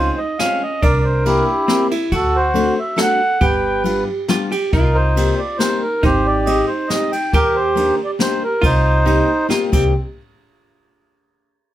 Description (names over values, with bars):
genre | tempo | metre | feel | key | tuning
musette waltz | 138 BPM | 3/4 | straight | C minor | A4 = 442 Hz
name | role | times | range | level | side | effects
mellow accordion | melody | 0.0-9.5 s | Eb4 to G5 | -18 LUFS | right 1 dB | none
vintage hollow-body jazz guitar | second line | 0.0-9.9 s | C4 to A4 | -23 LUFS | right 4 dB | none
fingerpicked steel-string acoustic guitar | accompaniment | 0.0-9.9 s | G3 to G4 | -21 LUFS | left 5 dB | none
upright bass | bass | 0.0-9.9 s | G1 to Eb2 | -20 LUFS | equal | none
jazz brush drum kit | drums | 0.4-9.8 s | crash cymbal, kick drum, ride cymbal, snare drum | -22 LUFS | equal | none
room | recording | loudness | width
moderate studio reverb, RT60 0.6 s | none | -14 LUFS | side -13 dB against mid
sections
0.0-9.9 A section; 9.9-11.2 B section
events
none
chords
0.0 Dbmaj7; 0.8 C7; 2.1 D7; 3.4 G7; 4.7 Cm7; 6.0 Abmaj7; 7.3 Ebmaj7; 8.6 Cm7; 9.9 N.C.